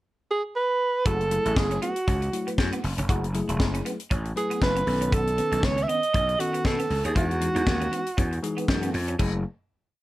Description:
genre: early-eighties boogie funk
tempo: 118 BPM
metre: 4/4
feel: swing 56% on 16ths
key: F# dorian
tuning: A4 = 441 Hz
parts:
  - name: breathy alto saxophone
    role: melody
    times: 0.3-8.6 s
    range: F#4 to E5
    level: -26 LUFS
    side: right 2 dB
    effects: slapback echo
  - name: bell-like tine electric piano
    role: accompaniment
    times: 1.1-9.4 s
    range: D#3 to B4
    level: -31 LUFS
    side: left 3 dB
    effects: none
  - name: semi-hollow electric guitar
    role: riff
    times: 1.1-9.3 s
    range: B3 to F#4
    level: -36 LUFS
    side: right 5 dB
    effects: ensemble chorus
  - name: gritty slap bass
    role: bass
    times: 1.1-9.4 s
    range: E1 to B2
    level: -28 LUFS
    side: equal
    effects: overdrive
  - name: tight funk drum kit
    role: drums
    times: 1.1-9.3 s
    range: crash cymbal, hi-hat, kick drum, snare drum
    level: -27 LUFS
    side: left 1 dB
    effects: gated reverb
room: light reverb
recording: none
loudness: -23 LUFS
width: side -16 dB against mid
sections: 0.0-1.1 pickup bar; 1.1-9.2 verse; 9.2-10.0 final chord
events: none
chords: 0.0 N.C.; 1.1 F#m9; 4.9 B9; 7.2 Emaj9; 9.2 F#m9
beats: 0.04 0.55 | 1.06 1.57 2.08 2.58 | 3.09 3.60 4.11 4.62 | 5.13 5.63 6.14 6.65 | 7.16 7.67 8.18 8.69 | 9.19

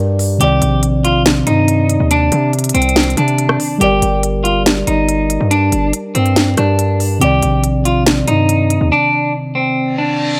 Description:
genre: hip hop, trap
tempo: 141 BPM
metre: 4/4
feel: half-time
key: unclear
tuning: A4 = 440 Hz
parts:
  - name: muted felt-like synth keys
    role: accompaniment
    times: 0.0-10.4 s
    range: C3 to D5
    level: -20 LUFS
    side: equal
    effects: chorus
  - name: distorted 808-style bass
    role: bass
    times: 0.0-8.9 s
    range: G1 to C3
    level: -19 LUFS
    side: equal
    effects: distortion
  - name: trap drum kit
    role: drums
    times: 0.2-8.8 s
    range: hi-hat, rim click, snare drum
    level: -19 LUFS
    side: equal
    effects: none
  - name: clean electric guitar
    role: melody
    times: 0.4-10.4 s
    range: C4 to G4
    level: -18 LUFS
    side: equal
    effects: none
  - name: reverse cymbal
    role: sound effects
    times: 9.9-10.4 s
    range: none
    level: -25 LUFS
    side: equal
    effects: none
room: little or no reverb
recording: none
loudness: -14 LUFS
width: mono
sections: 0.0-10.4 A section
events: break 0.0-0.4; reverse cymbal 9.9-10.4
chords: 0.4 Cmadd9; 3.8 Gm; 7.2 Cmadd9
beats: | 0.41 0.83 1.26 1.68 | 2.11 2.53 2.96 3.38 | 3.81 4.24 4.66 5.09 | 5.51 5.94 6.36 6.79 | 7.21 7.64 8.06 8.49 | 8.92 9.34 9.77 10.19

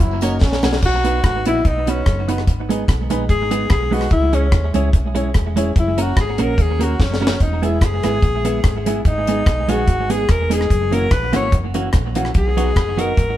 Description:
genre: ska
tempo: 146 BPM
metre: 4/4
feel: swing 54% on 8ths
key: B major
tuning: A4 = 440 Hz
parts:
  - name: warm trombone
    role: melody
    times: 0.0-0.8 s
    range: C#4 to E4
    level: -25 LUFS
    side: equal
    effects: none
  - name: hollow-body short-scale fingered electric bass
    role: bass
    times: 0.0-13.4 s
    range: E1 to D#2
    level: -22 LUFS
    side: equal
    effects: none
  - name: deep reggae drum kit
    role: drums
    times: 0.0-13.3 s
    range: crash cymbal, hi-hat, kick drum, rim click, snare drum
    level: -18 LUFS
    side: equal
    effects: none
  - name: clean electric guitar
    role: accompaniment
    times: 0.2-13.1 s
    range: E3 to B4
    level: -23 LUFS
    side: right 4 dB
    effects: analog delay
  - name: dark upright piano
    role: stabs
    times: 0.2-13.1 s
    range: A#3 to C#5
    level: -27 LUFS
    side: left 2 dB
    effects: none
  - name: tambourine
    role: percussion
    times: 0.2-0.7 s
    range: none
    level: -40 LUFS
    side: left 3 dB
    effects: none
  - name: bright alto saxophone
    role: melody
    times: 0.9-13.4 s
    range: C#4 to C#5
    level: -21 LUFS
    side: left 2 dB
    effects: none
room: light reverb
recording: band playing live in one room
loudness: -15 LUFS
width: side -13 dB against mid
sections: 0.8-13.4 A section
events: drum fill 0.4-0.8, 7.0-7.4; alto saxophone solo 0.8-13.4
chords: 0.0 F#; 0.8 B; 2.5 G#m; 4.1 C#m; 5.8 F#; 7.4 E; 9.1 G#m; 10.7 F#7; 12.4 B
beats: 0.00 0.41 | 0.83 1.24 1.65 2.06 | 2.47 2.88 3.29 3.70 | 4.12 4.53 4.94 5.35 | 5.76 6.17 6.59 7.00 | 7.41 7.82 8.23 8.64 | 9.06 9.47 9.88 10.29 | 10.71 11.12 11.53 11.94 | 12.35 12.76 13.18

